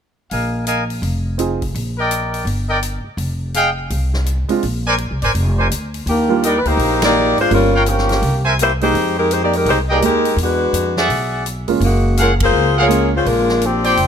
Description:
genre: jazz, big band swing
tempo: 167 BPM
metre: 4/4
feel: swing 63% on 8ths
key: Eb major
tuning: A4 = 440 Hz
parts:
  - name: warm trumpet section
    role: stabs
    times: 0.3-14.1 s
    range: G4 to Ab5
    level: -20 LUFS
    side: equal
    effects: none
  - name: upright bass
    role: bass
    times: 0.3-14.1 s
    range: F1 to F2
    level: -19 LUFS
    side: equal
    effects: none
  - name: swinging big-band drum kit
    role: drums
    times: 0.3-14.1 s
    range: hi-hat, kick drum, ride cymbal, snare drum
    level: -27 LUFS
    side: left 2 dB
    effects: none
  - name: warm grand piano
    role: accompaniment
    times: 1.4-1.6, 4.5-13.1 s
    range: G3 to Bb4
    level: -20 LUFS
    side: right 6 dB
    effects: none
  - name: mellow saxophone section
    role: melody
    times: 6.1-14.1 s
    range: Db3 to D5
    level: -16 LUFS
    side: left 1 dB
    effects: none
room: light reverb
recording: none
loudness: -14 LUFS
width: side -8 dB against mid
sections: 0.3-6.1 A section; 6.1-14.1 B section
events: band accent 7.0, 12.4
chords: 0.3 Bb7sus4; 1.7 Ebmaj7/Bb; 3.2 Fm; 4.6 Bb9; 6.1 Ebmaj7; 7.5 Gm7b5; 8.2 C7b13; 8.9 Fm11; 10.4 E9; 11.8 Gbmaj9; 13.3 Bb13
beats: | 0.31 0.67 1.03 1.39 | 1.75 2.11 2.47 2.83 | 3.19 3.55 3.91 4.27 | 4.63 4.99 5.35 5.71 | 6.07 6.43 6.79 7.15 | 7.51 7.87 8.22 8.59 | 8.94 9.30 9.66 10.02 | 10.38 10.74 11.10 11.46 | 11.82 12.18 12.54 12.90 | 13.26 13.62 13.98

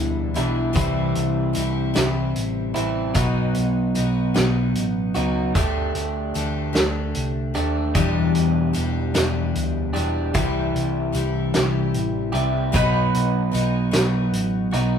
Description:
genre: folk rock and heartland rock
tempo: 50 BPM (dotted quarters)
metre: 6/8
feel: straight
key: E minor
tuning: A4 = 440 Hz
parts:
  - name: picked twelve-string acoustic guitar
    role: accompaniment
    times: 0.0-15.0 s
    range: E2 to G4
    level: -26 LUFS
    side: left 6 dB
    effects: none
  - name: electric guitar through a small old amp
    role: riff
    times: 0.0-15.0 s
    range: E2 to G4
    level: -24 LUFS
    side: right 2 dB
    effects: warbly pitch drift
  - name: hollow-body short-scale picked electric bass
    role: bass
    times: 0.0-15.0 s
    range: E1 to D#2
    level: -25 LUFS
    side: equal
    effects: none
  - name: loose indie drum kit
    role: drums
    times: 0.4-14.9 s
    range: hi-hat, kick drum, snare drum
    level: -24 LUFS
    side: right 1 dB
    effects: none
  - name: bowl-back mandolin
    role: second line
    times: 12.8-15.0 s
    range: B4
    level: -27 LUFS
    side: right 6 dB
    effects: none
room: moderate studio reverb, RT60 0.6 s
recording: band playing live in one room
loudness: -19 LUFS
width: side -8 dB against mid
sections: 0.0-15.0 A section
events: none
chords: 0.0 Em7; 0.7 C; 3.1 B; 5.5 Dsus4; 7.9 Em7; 10.3 C; 12.7 B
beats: | 0.75 1.95 | 3.15 4.35 | 5.55 6.75 | 7.94 9.14 | 10.34 11.54 | 12.73 13.93

